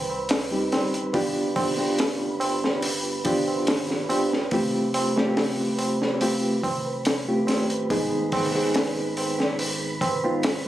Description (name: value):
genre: trip hop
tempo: 71 BPM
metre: 4/4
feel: straight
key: unclear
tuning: A4 = 440 Hz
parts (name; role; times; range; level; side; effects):
- round analog bass; bass; 0.0-10.7 s; F1 to C2; -39 LUFS; equal; none
- wind-like tuned noise texture; texture; 0.0-10.7 s; B4; -34 LUFS; right 3 dB; built-in reverb
- tabla; percussion; 0.1-10.6 s; none; -31 LUFS; right 2 dB; none
- crunchy breakbeat drum kit; drums; 0.3-10.7 s; hi-hat, kick drum, snare drum; -27 LUFS; equal; none
- reed electric piano; accompaniment; 0.5-10.7 s; G3 to Ab4; -25 LUFS; equal; tremolo, low-pass filter, tape echo
room: light reverb, small room ambience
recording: recorded on a phone in the room, club reverb, compression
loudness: -22 LUFS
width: side -13 dB against mid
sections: 0.0-10.7 A section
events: none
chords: 0.0 Cm; 1.1 G7; 4.5 Fadd9; 7.9 Abm